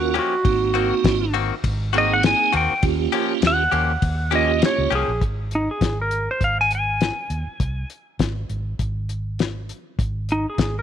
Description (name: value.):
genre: straight-eighth soul blues.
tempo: 101 BPM.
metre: 4/4.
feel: swing 55% on 16ths.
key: unclear.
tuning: A4 = 440 Hz.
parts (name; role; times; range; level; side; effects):
clean lap steel guitar; melody; 0.0-10.8 s; Eb4 to Ab5; -21 LUFS; equal; none.
tonewheel organ; accompaniment; 0.0-4.9 s; Bb3 to Bb4; -24 LUFS; right 17 dB; overdrive, chorus vibrato, slow rotary speaker.
vintage muted fingered electric bass; bass; 0.0-10.8 s; Ab1 to Eb2; -25 LUFS; right 1 dB; none.
direct-recorded clean electric guitar; stabs; 0.1-5.1 s; Eb3 to G4; -26 LUFS; left 12 dB; none.
cloth-damped thuddy drum kit; drums; 0.2-10.7 s; hi-hat, kick drum, ride cymbal, snare drum; -23 LUFS; left 3 dB; none.
room: light reverb.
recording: 1960s-style stereo with parts hard left and right.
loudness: -19 LUFS.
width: side -9 dB against mid.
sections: 0.0-5.2 A section; 5.2-10.8 B section.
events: electric slide guitar solo 0.0-5.2.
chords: 0.5 Ab9; 2.8 Eb9; 5.2 N.C..